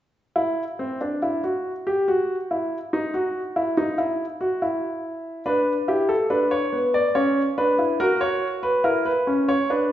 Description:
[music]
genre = classical, baroque-style 3-part fugue for grand piano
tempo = 71 BPM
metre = 3/4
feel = straight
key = unclear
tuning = A4 = 440 Hz
[part]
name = warm concert grand piano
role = solo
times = 0.4-9.9 s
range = B3 to D5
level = -20 LUFS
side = equal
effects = none
[sound]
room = wet recital hall reverb, RT60 1.4 s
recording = recorded in a church or concert hall, nothing above 7.8 kHz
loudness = -21 LUFS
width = side -12 dB against mid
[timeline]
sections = 0.4-9.9 A section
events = none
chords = 0.4 N.C.; 5.5 Bm/D; 7.1 C#m7; 8.0 F#7

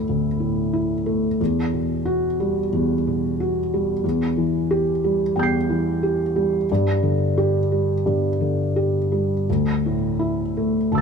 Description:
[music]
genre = neoclassical minimalist piano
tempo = 89 BPM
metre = 4/4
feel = uneven beats, rubato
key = E minor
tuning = A4 = 440 Hz
[part]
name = felt-muted upright piano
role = solo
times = 0.0-11.0 s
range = D2 to C7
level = -19 LUFS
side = equal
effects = none
[sound]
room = light reverb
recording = minimal, uncompressed stereo recording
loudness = -19 LUFS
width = side -6 dB against mid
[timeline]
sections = 0.0-11.0 A section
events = none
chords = 0.0 Dsus2; 1.4 Emadd9; 4.0 C/E; 6.7 G5; 9.5 Dsus2

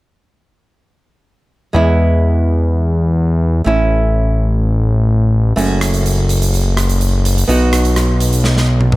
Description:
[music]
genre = calypso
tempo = 125 BPM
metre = 4/4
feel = straight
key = E major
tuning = A4 = 440 Hz
[part]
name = nylon-string guitar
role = accompaniment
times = 1.7-9.0 s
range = G#3 to F#4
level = -19 LUFS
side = right 2 dB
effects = none
[part]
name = fat analog bass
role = bass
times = 1.7-9.0 s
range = F#1 to E2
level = -13 LUFS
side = equal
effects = none
[part]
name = big rock drum kit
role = drums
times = 5.6-9.0 s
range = hi-hat, rim click, snare drum, toms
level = -20 LUFS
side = right 1 dB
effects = none
[sound]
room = light reverb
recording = none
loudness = -12 LUFS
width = side -19 dB against mid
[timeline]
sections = 1.7-9.0 A section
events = drum fill 8.4-9.0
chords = 1.7 E; 3.7 A; 5.6 F#m; 7.5 B

